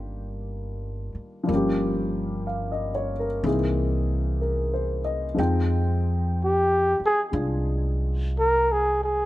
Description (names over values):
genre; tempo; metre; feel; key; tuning
jazz ballad; 62 BPM; 4/4; swing 66% on 8ths; C minor; A4 = 440 Hz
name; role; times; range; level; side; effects
dark upright piano; accompaniment; 0.0-9.3 s; Eb3 to G5; -27 LUFS; left 1 dB; none
upright bass; bass; 0.0-9.2 s; G1 to F2; -27 LUFS; equal; none
mellow flugelhorn; melody; 6.4-9.3 s; G4 to Bb4; -21 LUFS; equal; none
room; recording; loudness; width
light reverb; nothing above 10.9 kHz; -22 LUFS; side -16 dB against mid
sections
0.0-9.3 A section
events
flugelhorn solo 0.0-9.3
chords
0.0 Cm11 (rootless); 1.5 Gm7b5; 3.4 C7alt; 5.4 Fm9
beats
0.51 | 1.49 2.46 3.44 4.41 | 5.38 6.36 7.33 8.31